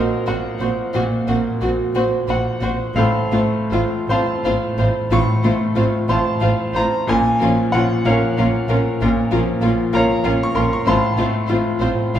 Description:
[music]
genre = classical, romantic movement for piano and orchestra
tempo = 50-66 BPM (dotted quarters)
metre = 12/8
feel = rubato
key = Bb minor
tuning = A4 = 436 Hz
[part]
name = bright grand piano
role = melody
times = 0.0-12.2 s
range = A2 to Db6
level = -18 LUFS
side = equal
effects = none
[part]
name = warm studio cello section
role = bass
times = 0.0-12.2 s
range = A2 to Bb2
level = -26 LUFS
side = right 3 dB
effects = none
[part]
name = warm symphonic double bass section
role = bass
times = 0.0-12.2 s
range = A1 to Bb1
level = -25 LUFS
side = right 1 dB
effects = none
[part]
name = rich chamber violin section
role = melody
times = 0.3-12.2 s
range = Bb4 to C5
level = -30 LUFS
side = left 4 dB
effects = none
[part]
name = warm chamber violin section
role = second line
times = 0.3-12.2 s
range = F4 to Gb4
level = -27 LUFS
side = left 3 dB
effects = none
[part]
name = rich chamber viola section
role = accompaniment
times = 0.3-12.2 s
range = C4 to Db4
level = -27 LUFS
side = right 2 dB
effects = none
[sound]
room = wet recital hall reverb, RT60 1.3 s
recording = heard from further back in the room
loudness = -16 LUFS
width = side -10 dB against mid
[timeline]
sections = 0.0-12.2 A section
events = none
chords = 0.0 Cm7b5/Bb; 3.0 F/A; 7.1 Bbm; 10.9 F/A

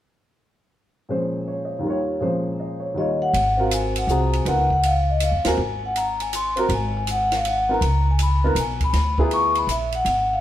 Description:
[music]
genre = jazz, small-group swing and bop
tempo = 161 BPM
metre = 3/4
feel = swing 65% on 8ths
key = Ab mixolydian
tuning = A4 = 439 Hz
[part]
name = dark baby grand piano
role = accompaniment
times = 1.1-9.7 s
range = Eb2 to Eb5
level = -24 LUFS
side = right 1 dB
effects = none
[part]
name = vibraphone with soft mallets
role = melody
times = 3.0-10.4 s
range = Eb5 to Db6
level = -22 LUFS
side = left 2 dB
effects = none
[part]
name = upright bass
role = bass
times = 3.3-10.4 s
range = Ab1 to F2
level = -23 LUFS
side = equal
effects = none
[part]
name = compact cocktail drum kit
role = drums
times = 3.3-10.2 s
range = hi-hat, kick drum, ride cymbal, snare drum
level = -28 LUFS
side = right 1 dB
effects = none
[sound]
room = wet stone room reverb, RT60 1.0 s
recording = band playing live in one room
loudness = -19 LUFS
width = side -12 dB against mid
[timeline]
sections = 1.1-3.3 A section; 3.3-10.4 B section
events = band accent 5.4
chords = 1.1 Bbm9; 1.8 Eb7; 2.2 Bbm9; 3.0 Eb7; 3.3 Ab13; 4.5 Db13; 5.6 Ab7(no3); 7.8 Db7(no3); 8.9 Ddim7

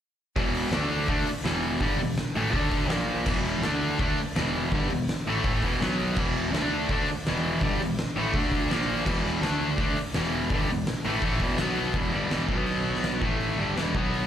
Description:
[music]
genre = garage rock duo or trio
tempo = 166 BPM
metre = 4/4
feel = straight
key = unclear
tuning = A4 = 440 Hz
[part]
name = cranked stack guitar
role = riff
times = 0.4-14.3 s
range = E2 to D4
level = -26 LUFS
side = equal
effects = overdrive
[part]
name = overdriven picked electric bass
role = bass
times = 0.4-14.3 s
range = E1 to D2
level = -32 LUFS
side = equal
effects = none
[part]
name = oversized low-tuned drum kit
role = drums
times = 0.4-14.2 s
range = crash cymbal, hi-hat, kick drum, snare drum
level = -30 LUFS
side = equal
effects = none
[sound]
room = light reverb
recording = live gig heard through the venue's PA, club reverb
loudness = -24 LUFS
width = side -10 dB against mid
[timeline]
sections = 0.4-12.0 A section; 12.0-14.3 B section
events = none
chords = 0.4 E5; 0.7 D5; 1.1 E5; 2.6 D5; 2.9 A#5; 3.3 E5; 3.6 D5; 4.0 E5; 5.8 B5; 6.2 E5; 6.5 D5; 6.9 E5; 8.3 D5; 8.7 A#5; 9.1 E5; 9.4 D5; 9.8 E5; 11.6 B5; 12.0 E5; 12.5 B5; 13.2 A5; 13.6 E5

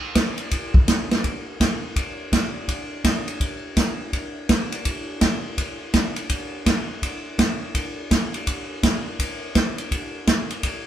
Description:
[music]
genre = jazz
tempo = 166 BPM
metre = 4/4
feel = swing 63% on 8ths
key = none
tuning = none
[part]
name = vintage drum kit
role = drums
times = 0.2-10.7 s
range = hi-hat, kick drum, ride cymbal, snare drum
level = -21 LUFS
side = equal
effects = none
[sound]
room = light reverb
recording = band playing live in one room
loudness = -21 LUFS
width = side -11 dB against mid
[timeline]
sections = 0.0-10.9 A section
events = none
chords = none

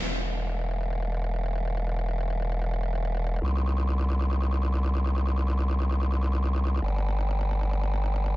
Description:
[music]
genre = dubstep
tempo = free time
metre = none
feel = none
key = E minor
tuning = A4 = 443 Hz
[part]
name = growl bass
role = bass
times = 0.0-8.4 s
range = E1 to C2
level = -25 LUFS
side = equal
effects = chorus, overdrive
[sound]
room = little or no reverb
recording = dense, heavily limited modern master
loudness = -25 LUFS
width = side -18 dB against mid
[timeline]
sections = 0.0-8.4 A section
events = none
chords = none

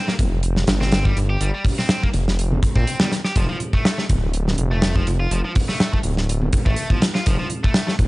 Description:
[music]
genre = breakbeat, breaks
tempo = 123 BPM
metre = 4/4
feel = swing 54% on 16ths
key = unclear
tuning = A4 = 440 Hz
[part]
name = tight distorted guitar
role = riff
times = 0.0-7.9 s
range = F3 to G4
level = -28 LUFS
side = equal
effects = distortion, tube saturation, analog delay
[part]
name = gated 80s drum kit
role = drums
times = 0.1-8.1 s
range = hi-hat, kick drum, snare drum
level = -19 LUFS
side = equal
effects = none
[part]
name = detuned saw bass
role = bass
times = 0.2-8.1 s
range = D1 to Bb1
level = -20 LUFS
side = equal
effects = none
[part]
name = congas and bongos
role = percussion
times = 0.2-8.1 s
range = none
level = -30 LUFS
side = right 1 dB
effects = none
[sound]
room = studio ambience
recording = nothing above 10.3 kHz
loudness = -17 LUFS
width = side -21 dB against mid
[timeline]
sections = 0.0-8.1 A section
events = none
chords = 0.0 G7(no3); 3.4 F6

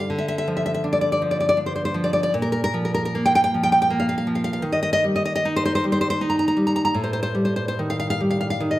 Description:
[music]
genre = romantic piece for solo classical guitar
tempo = 79 BPM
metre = 3/4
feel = uneven beats, rubato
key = unclear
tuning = A4 = 440 Hz
[part]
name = nylon-string guitar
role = solo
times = 0.0-8.8 s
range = A2 to Bb5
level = -19 LUFS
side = equal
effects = none
[sound]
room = moderate recital hall reverb, RT60 1.3 s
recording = faint mains hum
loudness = -19 LUFS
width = side -15 dB against mid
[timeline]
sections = 0.0-8.8 A section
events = none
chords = 0.1 Dm; 2.3 Bb5; 4.6 Eb; 7.0 Am7b5

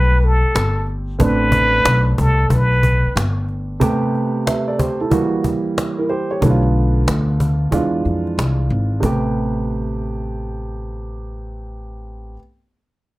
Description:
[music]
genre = hip hop, jazz-hop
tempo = 92 BPM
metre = 4/4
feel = swing 66% on 16ths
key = A minor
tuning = A4 = 440 Hz
[part]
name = trumpet with plunger mute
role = melody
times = 0.0-3.2 s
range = A4 to B4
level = -18 LUFS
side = equal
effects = slapback echo
[part]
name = dark concert grand piano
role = accompaniment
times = 0.0-12.4 s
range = C3 to E5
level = -21 LUFS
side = right 2 dB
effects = none
[part]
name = upright bass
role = bass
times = 0.0-12.4 s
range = G1 to F2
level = -18 LUFS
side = equal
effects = none
[part]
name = cajon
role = drums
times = 0.2-9.2 s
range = none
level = -22 LUFS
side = equal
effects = none
[sound]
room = moderate studio reverb, RT60 0.5 s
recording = none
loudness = -15 LUFS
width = side -18 dB against mid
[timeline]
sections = 0.0-3.8 A section; 3.8-9.0 B section; 9.0-11.6 C section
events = break 3.8-6.4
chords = 0.0 Am9; 5.1 F#7b9; 6.4 Bm7b5; 7.7 E7b9; 9.0 Am9

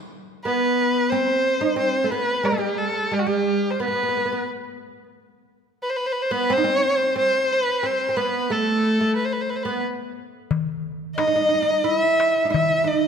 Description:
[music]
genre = Arabic maqam ensemble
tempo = 90 BPM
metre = 4/4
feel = straight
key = unclear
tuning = A4 = 439 Hz
[part]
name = warm violin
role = melody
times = 0.5-13.1 s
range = F#4 to E5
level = -21 LUFS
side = equal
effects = none
[part]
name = oud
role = second line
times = 0.5-13.1 s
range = G#3-50c to E4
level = -24 LUFS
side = right 2 dB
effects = none
[part]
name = darbuka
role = percussion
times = 10.5-12.9 s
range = none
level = -26 LUFS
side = left 6 dB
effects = none
[sound]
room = moderate concert hall reverb, RT60 2.1 s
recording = none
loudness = -19 LUFS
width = side -7 dB against mid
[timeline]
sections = 0.0-13.1 A section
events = none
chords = none

